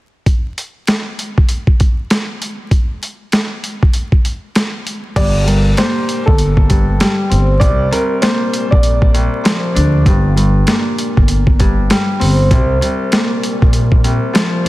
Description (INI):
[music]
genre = hip hop, boom-bap hip-hop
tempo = 98 BPM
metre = 4/4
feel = swing 58% on 16ths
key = G minor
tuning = A4 = 440 Hz
[part]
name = boom bap sampler-style drum kit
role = drums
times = 0.3-14.7 s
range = crash cymbal, hi-hat, kick drum, snare drum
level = -14 LUFS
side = equal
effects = none
[part]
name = clear upright piano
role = melody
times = 5.2-9.6 s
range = A4 to D5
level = -20 LUFS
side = equal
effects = high-pass filter, low-pass filter, digital delay
[part]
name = Celtic harp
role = accompaniment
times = 5.2-14.7 s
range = C2 to D4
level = -17 LUFS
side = left 1 dB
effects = high-pass filter, low-pass filter
[part]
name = upright bass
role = bass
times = 5.2-14.7 s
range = G1 to D2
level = -14 LUFS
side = equal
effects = none
[sound]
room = light reverb, studio reverb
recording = dense, heavily limited modern master, vinyl crackle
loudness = -12 LUFS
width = side -17 dB against mid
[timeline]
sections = 0.3-5.2 A section; 5.2-14.7 B section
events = none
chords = 0.3 N.C.; 5.2 Gmadd9; 7.6 C9sus4; 10.1 Gmadd11; 12.5 C7sus4